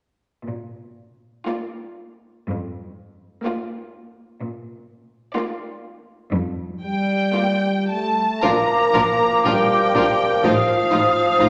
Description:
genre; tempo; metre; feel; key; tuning
classical; 54-64 BPM; 4/4; rubato; Bb major; A4 = 440 Hz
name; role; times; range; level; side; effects
rich studio cello section; bass; 0.5-11.5 s; F2 to Bb2; -31 LUFS; equal; none
rich studio violin section; melody; 1.5-11.5 s; D5 to Bb5; -26 LUFS; equal; none
rich studio violin section; second line; 1.5-11.5 s; F4 to C5; -30 LUFS; equal; none
rich studio viola section; accompaniment; 1.5-11.5 s; F3 to Eb4; -29 LUFS; equal; none
dark French horn section; sustained chords; 6.8-11.5 s; F3 to Bb3; -26 LUFS; equal; none
mellow hollow flute section; second line; 8.4-11.5 s; D6 to Eb6; -24 LUFS; equal; none
warm bassoon; accompaniment; 8.4-11.5 s; F3; -26 LUFS; equal; none
rich studio double bass section; bass; 8.4-11.5 s; A1 to Bb1; -33 LUFS; equal; none
warm clarinet; second line; 8.5-11.5 s; Bb4 to C5; -24 LUFS; equal; none
room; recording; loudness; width
wet recital hall reverb, RT60 1.6 s; none; -20 LUFS; mono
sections
0.5-8.4 A section; 8.4-11.5 B section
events
none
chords
0.5 Bb; 10.4 F7/A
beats
| 0.45 1.47 2.48 3.45 | 4.40 5.34 6.32 7.35 | 8.43 9.45 10.45 11.41

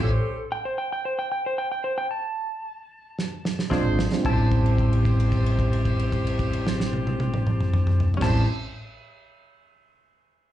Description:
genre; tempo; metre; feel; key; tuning
straight-eighth soul blues; 112 BPM; 4/4; straight; unclear; A4 = 440 Hz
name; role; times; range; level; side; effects
clean lap steel guitar; melody; 0.0-8.5 s; A4 to A5; -30 LUFS; right 1 dB; slapback echo
clear horn section; sustained chords; 0.0-0.4, 3.7-8.4 s; C#4 to B#4; -33 LUFS; left 1 dB; none
direct-recorded clean electric guitar; stabs; 0.0-0.1, 3.7-8.5 s; C4 to D5; -36 LUFS; left 7 dB; slapback echo
hollow-body short-scale fingered electric bass; bass; 0.0-0.2, 3.7-8.4 s; Ab1 to Bb1; -23 LUFS; equal; none
warm soul drum kit; drums; 3.2-8.3 s; crash cymbal, kick drum, snare drum, toms; -26 LUFS; equal; none
tine electric piano; accompaniment; 3.7-8.5 s; G3 to F4; -29 LUFS; right 2 dB; slapback echo
room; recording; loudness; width
light reverb; live gig heard through the venue's PA, club reverb, nothing above 10.6 kHz; -22 LUFS; side -12 dB against mid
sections
0.0-4.2 A section; 4.2-8.5 B section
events
stop 0.0-3.7; drum fill 3.2-4.2; held note 4.2-8.2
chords
0.0 A7#9; 3.7 Bb9; 4.2 A7#9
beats
0.50 1.04 1.57 | 2.11 2.64 3.18 3.71 | 4.25 4.78 5.32 5.85 | 6.39 6.92 7.46 8.00

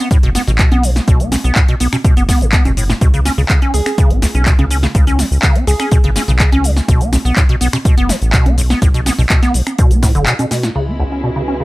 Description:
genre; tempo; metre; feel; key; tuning
acid house; 124 BPM; 4/4; straight; C# minor; A4 = 440 Hz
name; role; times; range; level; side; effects
liquid acid bass; riff; 0.0-11.6 s; B1 to C#4; -18 LUFS; equal; chorus, sidechain pumping, analog delay
punchy analog drum machine; drums; 0.0-10.9 s; cabasa, congas, crash cymbal, finger snaps, handclaps, hi-hat, snare drum; -18 LUFS; equal; overdrive, low-pass filter on hats, low-pass filter on perc, low-pass filter on snare, low-pass filter on cymbals
electronic kick drum; drums; 0.1-10.1 s; none; -12 LUFS; equal; overdrive
round analog bass; bass; 0.2-11.6 s; F#1 to C#2; -16 LUFS; equal; sidechain pumping
glassy wavetable pluck; melody; 3.7-5.9 s; G#4; -24 LUFS; right 2 dB; chorus, analog delay
warm studio string section; sustained chords; 10.8-11.6 s; C#3 to E4; -25 LUFS; equal; vintage 12-bit sampler grit, sidechain pumping
warbly tape-like pad; texture; 11.1-11.6 s; F#4 to B4; -26 LUFS; right 2 dB; chorus, built-in reverb, sidechain pumping
room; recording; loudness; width
light reverb; none; -11 LUFS; side -20 dB against mid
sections
0.0-10.8 A section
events
drop 0.0-10.8; break 10.3-10.8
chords
0.0 B5; 3.0 C#5; 6.9 N.C.; 10.8 C#m7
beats
0.11 0.59 | 1.08 1.56 2.04 2.53 | 3.01 3.50 3.98 4.46 | 4.95 5.43 5.92 6.40 | 6.88 7.37 7.85 8.34 | 8.82 9.30 9.79 10.27 | 10.75 11.24

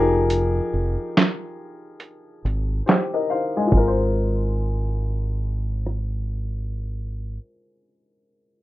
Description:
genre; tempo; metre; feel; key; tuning
lo-fi hip hop; 70 BPM; 4/4; swing 64% on 16ths; Ab major; A4 = 440 Hz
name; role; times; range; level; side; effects
dark upright piano; accompaniment; 0.0-8.6 s; F3 to Ab5; -22 LUFS; left 2 dB; none
deep dub fingered electric bass; bass; 0.0-7.4 s; F1 to Ab1; -24 LUFS; equal; none
boom bap sampler-style drum kit; drums; 0.3-6.1 s; handclaps, hi-hat, kick drum, rim click, snare drum; -18 LUFS; right 1 dB; overdrive
room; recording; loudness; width
moderate small room reverb, RT60 0.5 s; rough home demo mix, low-pass filter; -20 LUFS; side -16 dB against mid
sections
0.0-3.7 A section; 3.7-7.1 B section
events
break 0.3-3.7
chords
0.0 Fm11; 3.7 Ab69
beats
| 0.29 1.15 2.01 2.86 | 3.72 4.58 5.43 6.29

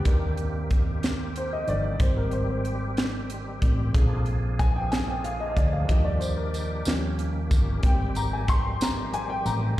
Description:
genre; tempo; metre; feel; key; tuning
slow gospel; 62 BPM (dotted quarters); 6/8; straight; unclear; A4 = 440 Hz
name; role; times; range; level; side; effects
dark upright piano; accompaniment; 0.0-9.8 s; D3 to C6; -31 LUFS; left 2 dB; slapback echo
bright tonewheel organ; sustained chords; 0.0-9.8 s; Eb3 to Ab4; -34 LUFS; right 2 dB; fast rotary speaker, chorus vibrato
hollow-body short-scale fingered electric bass; bass; 0.0-9.8 s; G1 to Eb2; -28 LUFS; equal; none
crisp fusion drum kit; drums; 0.1-9.6 s; hi-hat, kick drum, snare drum; -25 LUFS; equal; none
tambourine; percussion; 6.2-9.8 s; none; -40 LUFS; right 3 dB; slapback echo
room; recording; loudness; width
light reverb; live gig heard through the venue's PA, recital hall reverb; -23 LUFS; side -15 dB against mid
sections
0.0-9.8 A section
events
upright piano solo 0.0-9.8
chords
0.1 Cm7/Eb; 2.0 Abmaj7; 3.9 Bb7; 5.9 Ebmaj7; 6.9 Eb7; 7.8 Abmaj7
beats
| 0.06 1.03 | 2.00 2.97 | 3.95 4.92 | 5.89 6.87 | 7.84 8.81 | 9.78

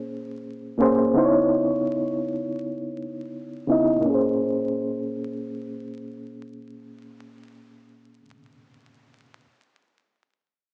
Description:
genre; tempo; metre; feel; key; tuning
hip hop; 83 BPM; 4/4; swing 57% on 16ths; unclear; A4 = 443 Hz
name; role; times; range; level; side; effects
bright reed electric piano; accompaniment; 0.0-9.5 s; Bb2 to Eb5; -25 LUFS; equal; fast tremolo, cassette tape, low-pass filter
room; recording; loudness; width
wet spring reverb, RT60 2.0 s; worn, warbling old tape, cassette tape, vinyl crackle, warbly pitch drift, small speaker sound; -24 LUFS; mono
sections
0.0-4.0 A section; 4.0-6.9 B section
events
filter sweep on reed electric piano 0.0-4.0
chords
0.0 Bbm7; 1.2 Dbm7; 4.0 Bbm7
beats
0.43 | 1.15 1.87 2.60 3.32 | 4.04 4.77 5.49 6.21

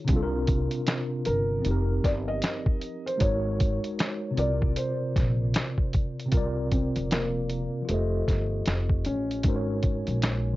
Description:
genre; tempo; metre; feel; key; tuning
lo-fi hip hop; 77 BPM; 4/4; swing 61% on 16ths; unclear; A4 = 440 Hz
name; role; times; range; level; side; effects
mellow tine electric piano; accompaniment; 0.0-10.6 s; C3 to Eb5; -30 LUFS; equal; medium stereo tremolo, cassette tape, low-pass filter, plate reverb
upright bass; bass; 0.1-10.6 s; F1 to C2; -29 LUFS; equal; none
lo-fi sampler-style drum kit; drums; 0.1-10.4 s; hi-hat, kick drum, snare drum; -26 LUFS; equal; none
felt-muted upright piano; melody; 1.3-10.6 s; A3 to Eb5; -32 LUFS; equal; low-pass filter, tape echo, plate reverb
room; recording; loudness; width
light reverb; cassette tape, nothing above 7.6 kHz; -24 LUFS; side -17 dB against mid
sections
0.0-6.3 A section; 6.3-10.6 B section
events
none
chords
0.1 C9sus4; 1.6 F9sus4; 3.2 Ab9sus4; 4.4 C9sus4; 7.9 Fsus2; 9.4 Ab9sus4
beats
| 0.09 0.87 1.65 2.43 | 3.21 3.99 4.77 5.54 | 6.33 7.10 7.88 8.66 | 9.44 10.22

